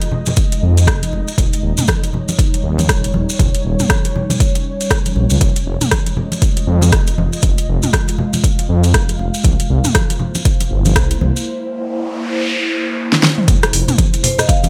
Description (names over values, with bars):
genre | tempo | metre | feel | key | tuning
afro house | 119 BPM | 4/4 | swing 60% on 16ths | F minor | A4 = 440 Hz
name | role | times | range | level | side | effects
ethereal airy pad | sustained chords | 0.0-14.7 s | F3 to F5 | -26 LUFS | equal | ensemble chorus, built-in reverb, sidechain pumping
deep house drum kit | drums | 0.0-14.7 s | hi-hat, rim click, snare drum, toms | -20 LUFS | equal | overdrive, small room reverb
congas | percussion | 0.0-14.7 s | none | -24 LUFS | equal | none
maracas | percussion | 0.0-14.7 s | none | -29 LUFS | equal | none
electronic kick drum | drums | 0.4-14.6 s | none | -18 LUFS | equal | overdrive, small room reverb
dark detuned saw bass | bass | 0.6-13.8 s | Eb1 to F2 | -18 LUFS | equal | sidechain pumping
noise sweep | sound effects | 11.8-13.5 s | none | -25 LUFS | equal | none
marimba with medium hard mallets | melody | 14.2-14.7 s | C5 to F5 | -22 LUFS | equal | none
room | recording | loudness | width
digital ambience | none | -15 LUFS | mono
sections
0.0-13.5 A section; 13.5-14.7 B section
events
noise sweep 11.8-13.5; drum fill 13.1-13.5; drop 13.5-14.7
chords
0.0 Fm7; 1.4 Eb7; 5.4 Fm7; 9.4 C7; 13.5 Fm7